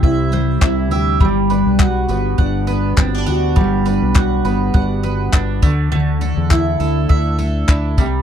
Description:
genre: acoustic pop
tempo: 102 BPM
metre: 4/4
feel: swing 55% on 16ths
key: G major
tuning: A4 = 441 Hz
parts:
  - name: fingerpicked steel-string acoustic guitar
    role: accompaniment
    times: 0.0-8.2 s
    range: C3 to G4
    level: -18 LUFS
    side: equal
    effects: double-tracked left and right
  - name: bowl-back mandolin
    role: arpeggios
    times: 0.0-8.2 s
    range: G3 to F#5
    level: -25 LUFS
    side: right 8 dB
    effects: slapback echo
  - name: fingered electric bass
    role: bass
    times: 0.0-8.2 s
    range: G1 to E2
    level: -19 LUFS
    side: equal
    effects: none
  - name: compact cocktail drum kit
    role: drums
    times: 0.0-8.1 s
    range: handclaps, kick drum, tambourine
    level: -13 LUFS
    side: equal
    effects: none
  - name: group handclap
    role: percussion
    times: 0.6-7.8 s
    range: none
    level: -31 LUFS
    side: left 13 dB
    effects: none
room: little or no reverb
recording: dry, close 1970s-style studio recording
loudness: -14 LUFS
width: side -9 dB against mid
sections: 0.0-8.2 A section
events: none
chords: 0.0 C; 1.2 Gmaj7; 5.6 Dsus2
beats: 0.03 0.62 | 1.21 1.80 2.39 2.98 | 3.56 4.15 4.74 5.33 | 5.92 6.51 7.09 7.68

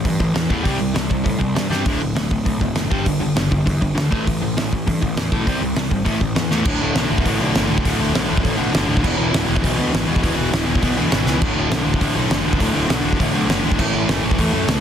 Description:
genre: punk rock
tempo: 202 BPM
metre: 4/4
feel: straight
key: D major from 6.7 s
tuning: A4 = 439 Hz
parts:
  - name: overdriven electric guitar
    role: riff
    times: 0.0-14.8 s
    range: D2 to C4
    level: -20 LUFS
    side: left 1 dB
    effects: none
  - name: fuzz picked electric bass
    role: bass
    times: 0.0-14.8 s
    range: D1 to A2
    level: -25 LUFS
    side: equal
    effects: overdrive
  - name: loose indie drum kit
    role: drums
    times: 0.1-14.8 s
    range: crash cymbal, hi-hat, kick drum, snare drum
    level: -21 LUFS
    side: equal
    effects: none
room: little or no reverb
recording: dense, heavily limited modern master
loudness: -16 LUFS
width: side -9 dB against mid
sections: 0.0-6.7 A section; 6.7-14.8 B section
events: drum fill 1.7, 6.5, 11.3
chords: 0.0 A5; 0.7 C5; 1.9 D; 2.9 G5; 4.1 A5; 5.5 C5; 6.1 A5; 6.7 D5; 9.0 E5; 11.4 D5; 13.8 A5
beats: 0.05 0.35 | 0.65 0.96 1.26 1.56 | 1.86 2.16 2.46 2.77 | 3.07 3.37 3.67 3.97 | 4.27 4.57 4.87 5.17 | 5.47 5.77 6.06 6.36 | 6.66 6.96 7.26 7.55 | 7.85 8.15 8.45 8.74 | 9.04 9.34 9.63 9.93 | 10.23 10.52 10.82 11.12 | 11.41 11.71 12.01 12.30 | 12.60 12.90 13.20 13.49 | 13.79 14.09 14.38 14.68

